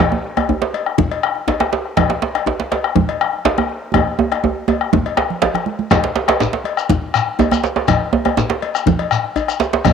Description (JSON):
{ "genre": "west african traditional, West African drum ensemble", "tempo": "122 BPM", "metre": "4/4", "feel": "straight", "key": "none", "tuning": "none", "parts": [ { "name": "bombo", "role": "percussion", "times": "0.1-9.9 s", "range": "none", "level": "-20 LUFS", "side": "left 7 dB", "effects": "none" }, { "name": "djembe", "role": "percussion", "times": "0.1-9.9 s", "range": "none", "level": "-18 LUFS", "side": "right 6 dB", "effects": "none" }, { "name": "congas", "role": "percussion", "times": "0.2-9.9 s", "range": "none", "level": "-19 LUFS", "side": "right 8 dB", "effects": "none" }, { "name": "cowbell", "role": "percussion", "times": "0.4-9.9 s", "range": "none", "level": "-25 LUFS", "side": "left 8 dB", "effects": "none" }, { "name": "djembe", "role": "percussion", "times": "0.4-9.9 s", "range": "none", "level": "-23 LUFS", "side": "left 6 dB", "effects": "none" }, { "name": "shekere", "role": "percussion", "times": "5.9-9.9 s", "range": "none", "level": "-24 LUFS", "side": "left 5 dB", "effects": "none" } ], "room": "wet spring reverb, RT60 1.9 s, small room ambience", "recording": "home recording on cassette", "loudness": "-15 LUFS", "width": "side -7 dB against mid", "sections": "0.0-5.9 A section; 5.9-9.9 B section", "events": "drum fill 3.9-5.9", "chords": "none" }